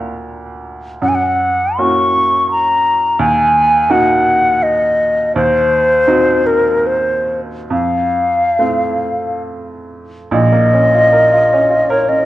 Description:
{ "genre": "classical, romantic duo for flute and grand piano", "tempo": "66-87 BPM", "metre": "3/4", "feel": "rubato", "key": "Bb minor", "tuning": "A4 = 437 Hz", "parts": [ { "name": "bright baby grand piano", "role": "accompaniment", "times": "0.0-12.3 s", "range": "Bb1 to Bb4", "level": "-18 LUFS", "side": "right 2 dB", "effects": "none" }, { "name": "mellow hollow silver concert flute", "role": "melody", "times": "1.0-12.3 s", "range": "Bb4 to Db6", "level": "-12 LUFS", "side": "left 1 dB", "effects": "none" } ], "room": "moderate scoring stage reverb, RT60 2.0 s", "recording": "worn, warbling old tape, cassette tape, warbly pitch drift, nothing above 10.4 kHz", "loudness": "-11 LUFS", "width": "side -15 dB against mid", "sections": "0.0-10.3 A section; 10.3-12.3 B section", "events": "none", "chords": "0.0 Bb/D; 1.0 Gb; 3.2 Ebm; 5.4 Cdim/Eb; 7.7 F; 10.3 Bbm", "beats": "0.32 | 1.02 1.79 2.50 | 3.19 3.89 4.63 | 5.35 6.08 6.86 | 7.71 8.60 9.47 | 10.34 11.15 11.91" }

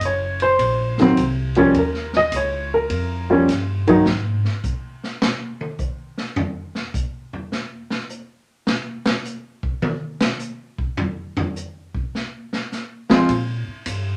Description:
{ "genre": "jazz piano trio", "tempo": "104 BPM", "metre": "4/4", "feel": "swing 67% on 8ths", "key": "unclear", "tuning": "A4 = 440 Hz", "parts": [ { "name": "warm upright piano", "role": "melody", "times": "0.0-4.1, 13.1-13.3 s", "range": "Eb3 to Eb5", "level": "-19 LUFS", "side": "equal", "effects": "none" }, { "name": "upright bass", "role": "bass", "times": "0.0-4.4, 13.3-14.2 s", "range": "Gb1 to Bb2", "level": "-27 LUFS", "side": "equal", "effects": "none" }, { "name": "swinging big-band drum kit", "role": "drums", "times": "0.0-14.0 s", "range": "hi-hat, kick drum, ride cymbal, snare drum, toms", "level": "-28 LUFS", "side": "equal", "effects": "none" } ], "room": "wet studio ambience, RT60 0.4 s", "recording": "none", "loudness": "-22 LUFS", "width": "mono", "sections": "0.0-14.2 A section", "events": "upright piano solo 0.0-14.2; drum solo 4.1-13.3", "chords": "0.0 Ab9 (rootless); 1.8 Eb9; 4.1 N.C.", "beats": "0.02 0.60 1.18 | 1.75 2.33 2.91 3.49 | 4.07 4.64 5.22 5.80 | 6.37 6.95 7.53 8.10 | 8.68 9.26 9.83 10.41 | 10.99 11.56 12.14 12.71 | 13.29 13.87" }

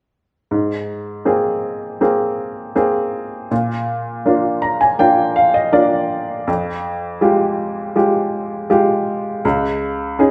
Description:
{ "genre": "pop", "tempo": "81 BPM", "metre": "4/4", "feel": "straight", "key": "unclear", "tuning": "A4 = 440 Hz", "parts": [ { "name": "bright upright piano", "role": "accompaniment", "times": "0.5-10.3 s", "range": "Db2 to Bb5", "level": "-18 LUFS", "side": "equal", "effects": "none" } ], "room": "wet stone room reverb, RT60 1.0 s", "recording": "band playing live in one room", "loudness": "-18 LUFS", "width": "mono", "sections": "0.5-10.3 A section", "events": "upright piano fill 4.3-6.5", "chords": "0.5 Abadd9; 3.5 Bb; 6.5 Fmadd9; 9.4 Dbsus2", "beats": "| 0.50 1.26 2.01 2.76 | 3.51 4.25 5.00 5.74 | 6.48 7.22 7.96 8.70 | 9.44 10.19" }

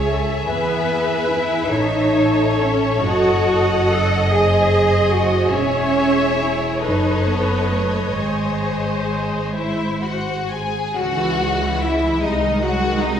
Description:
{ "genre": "classical, slow romantic movement for string orchestra", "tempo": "43-52 BPM (dotted quarters)", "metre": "6/8", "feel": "rubato", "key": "C# minor", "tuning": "A4 = 440 Hz", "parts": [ { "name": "rich studio violin section", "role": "melody", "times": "0.0-13.2 s", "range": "D#5 to G#5", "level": "-27 LUFS", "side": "left 4 dB", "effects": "none" }, { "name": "rich studio violin section", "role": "second line", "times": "0.0-13.2 s", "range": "D#4 to C#5", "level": "-23 LUFS", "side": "left 2 dB", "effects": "none" }, { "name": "warm studio viola section", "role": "accompaniment", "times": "0.0-13.2 s", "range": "B#2 to D#5", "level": "-23 LUFS", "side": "equal", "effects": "none" }, { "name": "warm studio cello section", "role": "bass", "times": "0.0-13.2 s", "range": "E3 to A4", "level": "-22 LUFS", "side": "right 1 dB", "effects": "none" }, { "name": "warm studio double bass section", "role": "bass", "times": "0.0-13.2 s", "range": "E1 to E2", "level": "-23 LUFS", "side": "right 1 dB", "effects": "none" } ], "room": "wet recital hall reverb, RT60 1.5 s", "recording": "heard from further back in the room", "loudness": "-16 LUFS", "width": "side -8 dB against mid", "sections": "0.0-10.9 A section; 10.9-13.2 B section", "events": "none", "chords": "0.5 E; 1.7 A; 3.0 F#m; 4.3 G#7/F#; 5.5 C#m/E; 6.8 D#m7b5/F#; 8.2 G#; 10.9 C#m; 12.2 G#7/B#", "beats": "| 0.50 1.71 | 3.04 4.30 | 5.53 6.83 | 8.18 9.57 | 10.95 12.22" }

